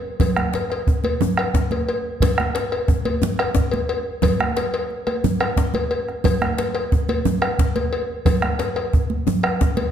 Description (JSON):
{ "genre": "west african traditional, West African drum ensemble", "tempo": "119 BPM (dotted quarters)", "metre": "12/8", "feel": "straight", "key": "none", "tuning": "none", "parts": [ { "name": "bombo", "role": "percussion", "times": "0.2-9.8 s", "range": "none", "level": "-21 LUFS", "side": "right 1 dB", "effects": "none" }, { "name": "congas", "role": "percussion", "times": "0.2-9.9 s", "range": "none", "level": "-25 LUFS", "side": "right 5 dB", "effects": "none" }, { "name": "cowbell", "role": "percussion", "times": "0.2-9.9 s", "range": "none", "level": "-24 LUFS", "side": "left 3 dB", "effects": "none" }, { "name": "djembe", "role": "percussion", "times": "0.2-9.8 s", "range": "none", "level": "-26 LUFS", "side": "left 5 dB", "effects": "none" } ], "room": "wet recital hall reverb, RT60 1.5 s", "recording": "none", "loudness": "-18 LUFS", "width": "side -9 dB against mid", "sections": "0.0-9.9 A section", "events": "none", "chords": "none" }